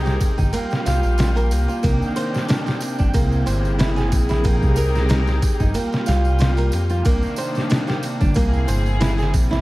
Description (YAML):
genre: trip hop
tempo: 92 BPM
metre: 4/4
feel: swing 55% on 16ths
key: C minor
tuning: A4 = 440 Hz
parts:
  - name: clear studio string section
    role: sustained chords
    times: 0.0-9.6 s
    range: C3 to Bb4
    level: -25 LUFS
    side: left 1 dB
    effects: none
  - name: flamenco guitar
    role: arpeggios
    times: 0.0-9.6 s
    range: Bb3 to F5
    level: -27 LUFS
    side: right 3 dB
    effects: vintage 12-bit sampler grit, tape echo
  - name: dark detuned saw bass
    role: bass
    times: 0.0-9.6 s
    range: G1 to F2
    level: -20 LUFS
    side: equal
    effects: none
  - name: flickering grainy texture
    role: texture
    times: 0.0-9.6 s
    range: G5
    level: -34 LUFS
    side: right 3 dB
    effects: built-in reverb
  - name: trip hop sampler-style drum kit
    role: drums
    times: 0.1-9.6 s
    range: kick drum, ride cymbal, snare drum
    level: -21 LUFS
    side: equal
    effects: none
  - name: tambourine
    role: percussion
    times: 0.1-9.6 s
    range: none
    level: -39 LUFS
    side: right 5 dB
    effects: none
room: small room ambience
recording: vinyl crackle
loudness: -17 LUFS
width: side -19 dB against mid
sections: 0.0-9.6 A section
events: none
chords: 0.0 Abmaj9; 0.5 Gm7; 1.8 Cm9; 3.1 C7b13; 4.4 Abmaj9; 5.7 Gm7/C; 7.1 Cm9; 8.4 C7b13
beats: 0.53 1.18 | 1.84 2.49 3.14 3.79 | 4.45 5.10 5.75 6.40 | 7.05 7.71 8.36 9.01